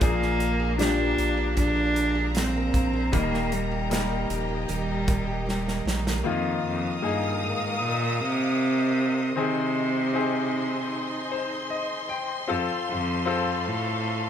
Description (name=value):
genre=pop ballad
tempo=77 BPM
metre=4/4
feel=straight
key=Eb major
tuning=A4 = 441 Hz
part: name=rich cello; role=melody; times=0.0-14.3 s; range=F2 to D4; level=-27 LUFS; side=right 1 dB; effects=none
part: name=bright concert grand piano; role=accompaniment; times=0.0-14.3 s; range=Bb2 to G5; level=-30 LUFS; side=left 5 dB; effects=none
part: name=warm studio string section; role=sustained chords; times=0.0-14.3 s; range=Ab3 to Eb6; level=-32 LUFS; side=left 1 dB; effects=none
part: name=picked steel-string acoustic guitar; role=arpeggios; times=0.0-6.8 s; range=Bb2 to Ab4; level=-34 LUFS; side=right 4 dB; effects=none
part: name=saturated sub bass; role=bass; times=0.0-6.2 s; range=Eb1 to Bb1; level=-29 LUFS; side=equal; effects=none
part: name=natural country drum kit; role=drums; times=0.0-6.2 s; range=hi-hat, kick drum, snare drum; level=-28 LUFS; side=right 1 dB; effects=none
room=moderate large studio reverb, RT60 1.0 s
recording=band playing live in one room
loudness=-23 LUFS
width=side -9 dB against mid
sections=0.0-6.2 A section; 6.2-14.3 A section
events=drum fill 5.5-6.2; grand piano fill 10.9-12.5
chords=0.0 Bb7; 3.1 Eb; 6.2 Ebsus2; 9.4 Ab; 12.5 F